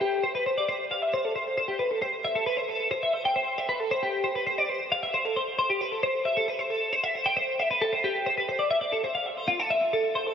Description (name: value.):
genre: rock.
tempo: 269 BPM (eighths).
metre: 9/8.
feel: straight.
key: unclear.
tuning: A4 = 442 Hz.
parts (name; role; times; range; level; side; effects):
twelve-string electric guitar; solo; 0.0-10.3 s; F4 to G5; -24 LUFS; equal; analog chorus, tape echo.
room: wet huge ambient reverb, RT60 3.7 s.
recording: dreamy mix soaked in reverb.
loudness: -24 LUFS.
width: side -8 dB against mid.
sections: 0.0-8.7 A section; 8.7-10.3 B section.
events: none.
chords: none.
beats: 0.01 0.23 0.46 | 0.68 0.91 1.13 1.35 1.58 1.80 2.02 2.25 2.47 | 2.69 2.92 3.14 3.36 3.59 3.81 4.03 4.25 4.48 | 4.70 4.92 5.15 5.37 5.59 5.82 6.04 6.26 6.49 | 6.71 6.93 7.15 7.38 7.60 7.82 8.04 8.27 8.49 | 8.71 8.93 9.15 9.37 9.60 9.82 10.04 10.26.